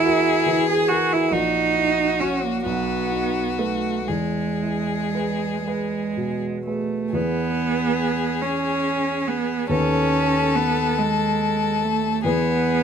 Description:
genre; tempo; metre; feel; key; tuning
classical, slow romantic movement for piano trio; 38-48 BPM (dotted quarters); 6/8; rubato; E major; A4 = 440 Hz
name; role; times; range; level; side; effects
rich violin; melody; 0.0-12.8 s; F#4 to A4; -26 LUFS; left 8 dB; none
clear cello; second line; 0.0-12.8 s; G#3 to G#4; -22 LUFS; right 5 dB; none
warm grand piano; accompaniment; 0.0-12.8 s; A#1 to C#5; -26 LUFS; left 1 dB; none
room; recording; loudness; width
light reverb; close, detailed microphones; -20 LUFS; side -7 dB against mid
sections
0.0-7.1 A section; 7.1-12.8 B section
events
none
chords
0.0 F#7/E; 1.3 F#7/A#; 2.6 B7; 4.1 E; 9.7 B7/D#; 12.3 E

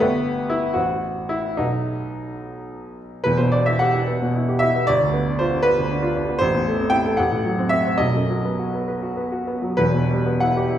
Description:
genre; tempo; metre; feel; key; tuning
classical, romantic character piece for solo piano; 61-82 BPM (dotted quarters); 6/8; rubato; E minor; A4 = 437 Hz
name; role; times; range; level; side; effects
clear grand piano; solo; 0.0-10.8 s; E1 to G5; -19 LUFS; equal; none
room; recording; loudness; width
wet recital hall reverb, RT60 1.3 s; heard from further back in the room; -18 LUFS; side -10 dB against mid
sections
0.0-3.3 A section; 3.3-10.8 B section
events
none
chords
0.0 Em/G; 0.8 F#dim/A; 1.6 B; 3.3 Em; 4.9 G7; 6.4 Am; 7.2 F#dim/A; 8.0 B; 9.8 Em

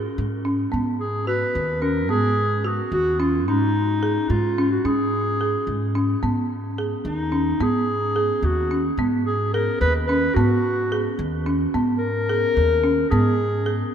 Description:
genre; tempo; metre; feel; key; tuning
contemporary instrumental, chamber music in an uneven meter; 218 BPM (eighths); 5/8; straight; G# dorian; A4 = 441 Hz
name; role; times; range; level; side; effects
folk marimba with medium hard mallets; arpeggios; 0.0-13.9 s; B3 to G#4; -24 LUFS; right 1 dB; none
upright bass; bass; 0.0-13.8 s; D#2 to G#2; -25 LUFS; equal; none
mellow clarinet; melody; 1.0-13.9 s; D#4 to B4; -24 LUFS; left 1 dB; none
room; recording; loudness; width
wet cathedral reverb, RT60 5.1 s; in a vast, echoing space; -19 LUFS; side -8 dB against mid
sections
0.0-6.2 A section; 6.2-13.9 B section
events
none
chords
0.0 C#5/G#; 0.7 G#m7; 3.5 C#sus2/G#; 6.2 G#m

